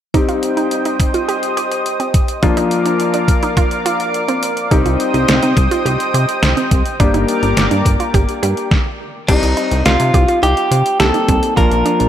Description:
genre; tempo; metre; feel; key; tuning
synth-pop; 105 BPM; 4/4; straight; C minor; A4 = 440 Hz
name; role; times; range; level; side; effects
clear concert grand piano; accompaniment; 0.1-12.1 s; F3 to G4; -20 LUFS; left 4 dB; none
lush unison pad; sustained chords; 0.1-8.7 s; Bb4 to Eb6; -20 LUFS; right 1 dB; chorus
wide unison pluck; arpeggios; 0.1-12.0 s; C4 to G4; -22 LUFS; right 5 dB; tape echo
detuned 8-bit digital drum machine; drums; 0.1-12.1 s; crash cymbal, hi-hat, kick drum, snare drum; -17 LUFS; equal; overdrive
chorused synth bass; bass; 4.7-12.1 s; G1 to C3; -17 LUFS; equal; none
direct-recorded clean electric guitar; melody; 9.3-12.1 s; Eb4 to Bb4; -15 LUFS; equal; spring reverb, tape echo
room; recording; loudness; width
moderate concert hall reverb, RT60 2.1 s; none; -13 LUFS; side -10 dB against mid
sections
0.1-9.3 A section; 9.3-12.1 B section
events
stop 8.7-9.3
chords
0.1 Cm; 2.4 Bb; 4.7 Cm; 7.0 Gm; 9.3 Cm; 11.6 Bb

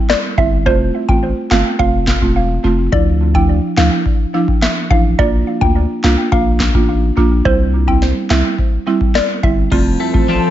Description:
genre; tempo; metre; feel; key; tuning
dancehall; 106 BPM; 4/4; straight; F major; A4 = 440 Hz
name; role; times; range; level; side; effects
mallet-like synth pluck; melody; 0.1-9.5 s; C5 to G5; -20 LUFS; equal; chorus, phaser, analog delay
booming analog drum machine; drums; 0.1-10.3 s; crash cymbal, handclaps, kick drum, rim click, snare drum; -17 LUFS; equal; overdrive
buzzing marimba with medium mallets; accompaniment; 0.4-10.3 s; F3 to F4; -17 LUFS; right 3 dB; sidechain pumping, analog delay
punchy sub bass; bass; 0.4-10.4 s; E1 to D2; -16 LUFS; equal; none
ethereal airy pad; sustained chords; 10.0-10.5 s; F3 to A5; -19 LUFS; left 1 dB; ensemble chorus, built-in reverb, sidechain pumping
twelve-string electric guitar; arpeggios; 9.7-10.5 s; F2 to C4; -19 LUFS; left 5 dB; none
room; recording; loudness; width
digital ambience; echo-heavy mix, nothing above 7.7 kHz; -12 LUFS; side -12 dB against mid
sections
0.0-9.7 A section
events
none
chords
0.0 C; 0.7 F; 2.9 Dmadd9; 5.2 Bb; 7.5 C; 9.7 F

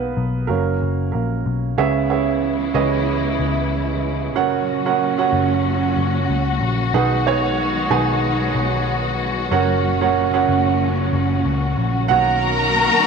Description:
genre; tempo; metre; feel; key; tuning
piano-driven pop; 93 BPM; 4/4; swing 56% on 16ths; B major; A4 = 439 Hz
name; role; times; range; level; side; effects
warm upright piano; accompaniment; 0.0-13.1 s; B2 to G#5; -20 LUFS; right 8 dB; none
vintage muted picked electric bass; bass; 0.0-12.9 s; F#1 to C#2; -22 LUFS; left 3 dB; none
warm studio string section; sustained chords; 1.8-13.1 s; A#2 to F#4; -23 LUFS; left 4 dB; none
warm studio violin section; second line; 12.1-13.1 s; A#4 to A#5; -17 LUFS; left 2 dB; none
room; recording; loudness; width
moderate echo chamber reverb, RT60 1.8 s; none; -17 LUFS; side -5 dB against mid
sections
0.0-1.8 A section; 1.8-12.1 B section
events
upright piano solo 0.0-1.8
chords
0.5 F#; 1.8 C#m7; 4.4 F#; 6.9 B6; 9.5 F#; 12.1 Bmaj7

